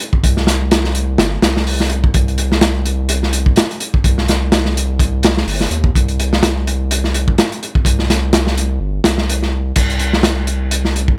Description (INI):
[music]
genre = breakbeat, breaks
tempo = 126 BPM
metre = 4/4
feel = swing 57% on 16ths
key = C minor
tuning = A4 = 440 Hz
[part]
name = crunchy breakbeat drum kit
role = drums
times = 0.1-11.2 s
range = crash cymbal, hi-hat, kick drum, snare drum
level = -17 LUFS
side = equal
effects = none
[part]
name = saturated sub bass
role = bass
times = 0.2-11.2 s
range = G1 to Eb2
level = -20 LUFS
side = equal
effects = none
[sound]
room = little or no reverb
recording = none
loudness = -16 LUFS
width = mono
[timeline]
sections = 0.0-9.8 A section; 9.8-11.2 B section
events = drop 0.0-9.8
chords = none